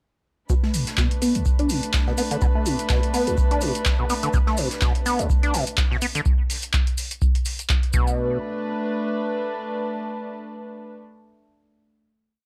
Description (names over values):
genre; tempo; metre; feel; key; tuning
acid house; 125 BPM; 4/4; swing 56% on 16ths; B minor; A4 = 440 Hz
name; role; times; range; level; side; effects
dark chamber string section; sustained chords; 0.5-11.0 s; A3 to B4; -31 LUFS; equal; sidechain pumping
acid bass, saw; riff; 0.5-8.4 s; B1 to D4; -27 LUFS; equal; overdrive, analog chorus, sidechain pumping, analog delay
electronic kick drum; drums; 0.5-8.0 s; none; -24 LUFS; equal; overdrive
jazz brush drum kit; drums; 0.5-6.1 s; hi-hat, shaker, snare drum; -41 LUFS; equal; none
cabasa; percussion; 0.5-8.2 s; none; -37 LUFS; equal; none
booming analog drum machine; drums; 0.7-7.9 s; handclaps, hi-hat; -30 LUFS; equal; overdrive
room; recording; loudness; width
light reverb; none; -23 LUFS; mono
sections
0.5-8.2 groove; 8.2-12.0 final hit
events
filter sweep on acid bass 0.5-6.3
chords
0.5 Bm7